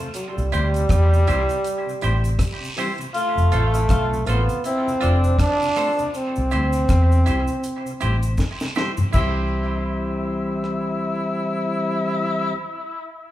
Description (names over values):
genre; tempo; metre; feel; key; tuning
roots reggae; 80 BPM; 4/4; swing 58% on 16ths; C major; A4 = 440 Hz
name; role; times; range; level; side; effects
clean electric guitar; accompaniment; 0.0-12.7 s; E4 to C5; -30 LUFS; right 2 dB; analog delay
mellow tonewheel organ; accompaniment; 0.0-12.5 s; F2 to C4; -29 LUFS; left 1 dB; slow rotary speaker
deep reggae drum kit; drums; 0.1-10.8 s; crash cymbal, hi-hat, kick drum, rim click, snare drum, toms; -24 LUFS; equal; none
clear trombone; melody; 0.2-8.4 s; G3 to D4; -23 LUFS; right 1 dB; none
cabasa and guiro; percussion; 0.2-9.5 s; none; -38 LUFS; right 1 dB; analog delay
vintage muted fingered electric bass; bass; 0.4-12.5 s; F1 to E2; -20 LUFS; equal; none
breathy tenor saxophone; second line; 3.1-12.5 s; D4 to F4; -27 LUFS; left 2 dB; analog delay
room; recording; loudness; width
wet large studio reverb, RT60 0.8 s; band playing live in one room; -19 LUFS; side -14 dB against mid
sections
0.0-9.1 A section; 9.1-12.1 B section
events
drum fill 8.4-9.1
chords
0.1 C; 3.1 F; 6.1 C